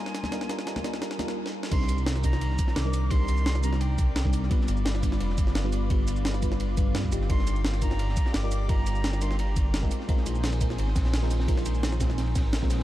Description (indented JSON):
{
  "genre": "liquid drum and bass",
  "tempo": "172 BPM",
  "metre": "4/4",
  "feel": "straight",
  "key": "C minor",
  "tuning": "A4 = 440 Hz",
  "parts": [
    { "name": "bright silver concert flute", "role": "melody", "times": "0.0-4.3, 7.3-9.9 s", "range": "G5 to D6", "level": "-38 LUFS", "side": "equal", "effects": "digital delay" },
    { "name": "mellow FM electric piano", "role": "accompaniment", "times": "0.0-12.8 s", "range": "G3 to B4", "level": "-33 LUFS", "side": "left 1 dB", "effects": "chorus, phaser, digital delay" },
    { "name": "lush unison pad", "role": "sustained chords", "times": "0.0-12.8 s", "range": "Eb3 to Eb6", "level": "-40 LUFS", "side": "equal", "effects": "chorus, sidechain pumping" },
    { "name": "jungle sampler-style drum kit", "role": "drums", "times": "0.1-12.8 s", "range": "crash cymbal, hi-hat, shaker, snare drum", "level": "-34 LUFS", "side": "right 1 dB", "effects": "high-pass filter on snare, high-pass filter on hats, high-pass filter on cymbals, high-pass filter on perc, high-pass filter on room" },
    { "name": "congas", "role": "percussion", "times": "0.2-1.3 s", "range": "none", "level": "-38 LUFS", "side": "left 5 dB", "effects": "none" },
    { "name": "dark detuned saw bass", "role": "bass", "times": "1.7-12.8 s", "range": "F1 to G2", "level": "-27 LUFS", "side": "equal", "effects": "none" },
    { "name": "crunchy breakbeat drum kit", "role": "drums", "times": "1.7-12.8 s", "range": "hi-hat, ride cymbal, snare drum", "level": "-39 LUFS", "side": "equal", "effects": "high-pass filter on cymbals, high-pass filter on hats, high-pass filter on snare, high-pass filter on room" },
    { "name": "electronic kick drum", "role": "drums", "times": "1.7-12.7 s", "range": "none", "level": "-26 LUFS", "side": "equal", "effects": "overdrive" }
  ],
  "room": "small room ambience",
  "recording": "dark, warm production",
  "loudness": "-24 LUFS",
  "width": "side -14 dB against mid",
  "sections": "0.0-1.7 A section; 1.7-12.8 B section",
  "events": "build-up 0.0-1.7; drum fill 0.0-1.4, 1.5; drop 1.7-12.8",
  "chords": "0.0 Bb7sus4; 1.7 Cm7; 4.5 G7; 7.1 Ebmaj9/G; 9.9 Bb7sus4"
}